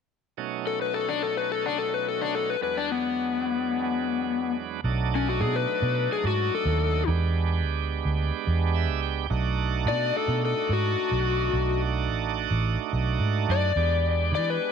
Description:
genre	straight-eighth soul blues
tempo	108 BPM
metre	4/4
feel	straight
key	unclear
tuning	A4 = 441 Hz
part	bright tonewheel organ	accompaniment	0.4-14.7 s	E2 to G5	-30 LUFS	right 14 dB	slow rotary speaker, overdrive
part	overdriven slide guitar	melody	0.7-14.7 s	B3 to D5	-26 LUFS	left 11 dB	none
part	vintage muted fingered electric bass	bass	4.8-14.6 s	A1 to E3	-26 LUFS	right 2 dB	none
room	light reverb, digital ambience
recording	1960s-style stereo with parts hard left and right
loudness	-24 LUFS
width	side -7 dB against mid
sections	0.4-4.8 A section; 4.8-14.7 B section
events	tonewheel organ fill 8.5-9.3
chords	0.4 B7; 2.6 E7; 4.8 B7#9; 7.1 E7#9; 9.3 B7#9; 13.8 E7#9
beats	| 0.38 0.94 1.49 2.05 | 2.61 3.17 3.73 4.28 | 4.84 5.40 5.96 6.52 | 7.08 7.63 8.19 8.75 | 9.31 9.87 10.42 10.98 | 11.54 12.10 12.65 13.21 | 13.77 14.32

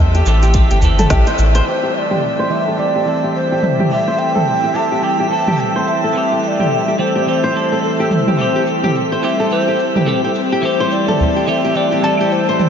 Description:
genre	organic downtempo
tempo	107 BPM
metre	4/4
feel	swing 60% on 16ths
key	A minor pentatonic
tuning	A4 = 440 Hz
part	clean electric guitar	accompaniment	0.0-12.7 s	E3 to A4	-21 LUFS	right 3 dB	phaser, sidechain pumping, low-pass filter, ping-pong delay, shimmer reverb
part	round analog bass	bass	0.0-1.6 s	G1 to E2	-13 LUFS	equal	none
part	drifting glass-harmonics texture	texture	0.0-12.7 s	E5	-26 LUFS	right 2 dB	chorus, built-in reverb, shimmer reverb
part	flamenco guitar	arpeggios	0.1-12.7 s	G4 to A5	-20 LUFS	left 1 dB	low-pass filter, ping-pong delay, shimmer reverb
part	organic electronic drum kit	drums	0.1-12.7 s	hi-hat, shaker, snare drum, toms	-22 LUFS	right 1 dB	overdrive, low-pass filter on hats, low-pass filter on perc, low-pass filter on toms, low-pass filter on snare, low-pass filter on room
part	electronic kick drum	drums	0.5-1.2 s	none	-15 LUFS	equal	overdrive
part	udu	percussion	0.8-1.0, 11.2-11.3 s	none	-18 LUFS	equal	none
part	breathy mellow low ney	melody	1.7-12.7 s	A4 to A5	-18 LUFS	left 1 dB	tape echo, shimmer reverb
part	warm analog pad	sustained chords	1.7-12.7 s	G3 to A4	-22 LUFS	left 2 dB	chorus, vintage 12-bit sampler grit, sidechain pumping, shimmer reverb
room	wet huge ambient reverb, RT60 8.5 s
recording	dreamy mix soaked in reverb, nothing above 7.5 kHz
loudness	-13 LUFS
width	side -8 dB against mid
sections	0.0-1.7 A section; 1.7-12.7 B section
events	band accent 1.1; filter sweep on nylon-string guitar 1.7-12.7; filter sweep on clean electric guitar 1.7-12.7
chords	0.0 Am7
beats	0.55 1.10 | 1.67 2.23 2.79 3.35 | 3.91 4.47 5.03 5.59 | 6.15 6.71 7.27 7.83 | 8.39 8.96 9.52 10.08 | 10.64 11.20 11.76 12.32

